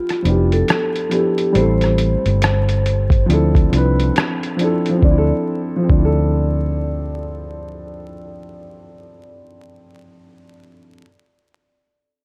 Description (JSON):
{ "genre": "lo-fi hip hop", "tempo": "69 BPM", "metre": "4/4", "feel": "swing 62% on 16ths", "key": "D dorian", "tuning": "A4 = 440 Hz", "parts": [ { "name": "vibraphone with soft mallets", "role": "melody", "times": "0.0-10.0 s", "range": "F4 to D5", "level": "-26 LUFS", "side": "equal", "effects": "low-pass filter, tape echo" }, { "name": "dark upright piano", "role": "accompaniment", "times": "0.0-11.0 s", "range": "F3 to B4", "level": "-23 LUFS", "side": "equal", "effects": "cassette tape, low-pass filter" }, { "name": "lo-fi sampler-style drum kit", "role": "drums", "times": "0.1-6.2 s", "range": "hi-hat, kick drum, rim click", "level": "-21 LUFS", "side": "equal", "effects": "none" }, { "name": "vintage muted fingered electric bass", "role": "bass", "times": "0.3-10.0 s", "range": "F1 to D2", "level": "-20 LUFS", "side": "equal", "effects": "none" } ], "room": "light reverb, small room ambience", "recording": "echo-heavy mix, vinyl crackle", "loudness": "-17 LUFS", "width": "mono", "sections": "0.0-5.0 A section; 5.0-8.5 B section", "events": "none", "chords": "0.0 G13; 1.5 Am7; 3.3 Dm9" }